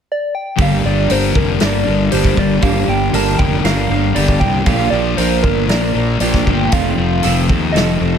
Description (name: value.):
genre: rock, shoegaze and dream pop.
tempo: 118 BPM.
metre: 4/4.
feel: straight.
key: G minor.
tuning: A4 = 439 Hz.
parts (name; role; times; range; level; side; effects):
soft struck synth lead; melody; 0.1-8.2 s; Bb4 to A5; -20 LUFS; equal; chorus, phaser, analog delay.
clean electric guitar; arpeggios; 0.6-8.2 s; F4 to Bb4; -25 LUFS; right 13 dB; lush chorus, analog delay.
overdriven semi-hollow guitar; riff; 0.6-8.2 s; F2 to D4; -21 LUFS; right 11 dB; reverse reverb.
thick fuzz guitar; riff; 0.6-8.2 s; F2 to Bb3; -18 LUFS; left 10 dB; distortion, lush chorus.
fuzz fingered electric bass; bass; 0.6-8.2 s; F1 to Eb2; -19 LUFS; equal; overdrive.
loose indie drum kit; drums; 0.6-7.9 s; hi-hat, kick drum, snare drum; -19 LUFS; equal; none.
room: light reverb, small room ambience.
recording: none.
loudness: -12 LUFS.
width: side -8 dB against mid.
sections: 0.6-8.2 A section.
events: none.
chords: 0.0 N.C.; 0.6 Gm7; 4.7 Bb6; 6.7 F7.